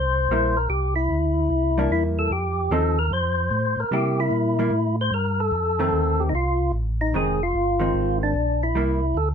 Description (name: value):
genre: jazz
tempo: 149 BPM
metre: 4/4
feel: swing 66% on 8ths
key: C mixolydian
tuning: A4 = 440 Hz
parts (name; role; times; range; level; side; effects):
- percussive tonewheel organ; melody; 0.0-9.3 s; D4 to C5; -23 LUFS; left 2 dB; slow rotary speaker, overdrive
- mellow tonewheel organ; bass; 0.0-9.3 s; F1 to C3; -24 LUFS; equal; slow rotary speaker
- vintage hollow-body jazz guitar; accompaniment; 0.3-9.0 s; Eb3 to A4; -25 LUFS; right 1 dB; none
room: light reverb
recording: minimal, uncompressed stereo recording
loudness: -20 LUFS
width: side -7 dB against mid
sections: 0.0-9.3 A section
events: none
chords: 0.0 C7; 2.3 F7; 3.9 C7; 5.5 F7; 7.1 Fm7; 8.8 C7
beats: 0.29 | 0.69 1.09 1.50 1.90 | 2.31 2.71 3.11 3.52 | 3.92 4.32 4.72 5.13 | 5.53 5.93 6.34 6.74 | 7.14 7.54 7.95 8.35 | 8.75 9.15